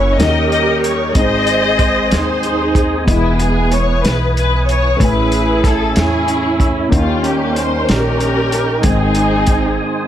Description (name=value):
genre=slow gospel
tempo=62 BPM (dotted quarters)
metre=6/8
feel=straight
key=unclear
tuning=A4 = 440 Hz
part: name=warm studio string section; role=melody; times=0.0-10.1 s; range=G#3 to D#5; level=-16 LUFS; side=equal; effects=none
part: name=dark baby grand piano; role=accompaniment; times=0.0-10.1 s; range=G#2 to G#5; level=-21 LUFS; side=left 3 dB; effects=none
part: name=dark French horn section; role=sustained chords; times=0.0-10.1 s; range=D#3 to C#4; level=-28 LUFS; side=right 3 dB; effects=none
part: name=tonewheel organ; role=sustained chords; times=0.0-10.1 s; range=A3 to D#6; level=-25 LUFS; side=right 3 dB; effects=slow rotary speaker, chorus vibrato
part: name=upright bass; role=bass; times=0.0-9.8 s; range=E1 to E2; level=-19 LUFS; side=equal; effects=none
part: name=warm soul drum kit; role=drums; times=0.2-9.6 s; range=hi-hat, kick drum, snare drum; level=-18 LUFS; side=equal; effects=none
room=light reverb, small room reverb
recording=none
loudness=-12 LUFS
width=side -11 dB against mid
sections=0.0-10.1 A section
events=break 9.8; grand piano fill 9.8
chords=0.2 D#7; 1.2 G#; 3.1 Emaj7; 5.0 Amaj7; 6.9 D#7; 8.8 G#